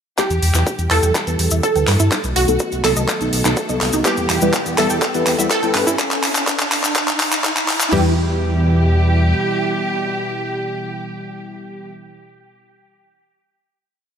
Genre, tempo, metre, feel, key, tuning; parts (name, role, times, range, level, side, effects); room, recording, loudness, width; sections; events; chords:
progressive house; 124 BPM; 4/4; straight; E minor; A4 = 439 Hz
wide unison pluck; melody; 0.2-11.9 s; F#4 to A4; -22 LUFS; right 2 dB; phaser, dub echo
rich symphonic violin section; second line; 0.2-11.9 s; F#4 to A4; -27 LUFS; equal; sidechain pumping, dub echo
warm analog pad; sustained chords; 0.2-11.9 s; B2 to G4; -26 LUFS; right 1 dB; chorus, sidechain pumping
wide unison pluck; arpeggios; 0.2-8.2 s; D#4 to G5; -28 LUFS; right 2 dB; vintage 12-bit sampler grit, sidechain pumping, dub echo
deep mellow chord stab; stabs; 0.2-11.9 s; F#3 to E5; -23 LUFS; left 2 dB; chorus, phaser, sidechain pumping, dub echo
big-room dance drum kit; drums; 0.2-8.0 s; crash cymbal, kick drum, snare drum, toms; -25 LUFS; equal; high-pass filter on kick, high-pass filter on snare, high-pass filter on toms, high-pass filter on cymbals, high-pass filter on room
pop drum kit; drums; 0.2-7.9 s; handclaps, hi-hat; -20 LUFS; equal; overdrive, high-pass filter on snare, sidechain pumping on hats, high-pass filter on hats, high-pass filter on room
tube shaker; percussion; 0.2-7.9 s; -26 LUFS; left 4 dB
riser; sound effects; 2.2-7.9 s; -27 LUFS; equal
dark detuned saw bass; bass; 0.3-9.3 s; B1 to G2; -18 LUFS; equal; sidechain pumping
moderate lush hall reverb, RT60 2.7 s; high-pass filter; -15 LUFS; side -8 dB against mid
0.2-7.9 build; 7.9-11.8 final chord
build-up 0.2-7.9; drum fill 0.2-7.9; filter sweep on synth pluck 0.2-6.0; filter sweep on synth stab 0.2-6.0; filter sweep on analog synth pad 0.2-6.0; filter sweep 0.2-7.9; riser 2.2-7.9
0.2 Em; 2.1 B7; 4.1 Em; 6.0 N.C.; 7.9 Em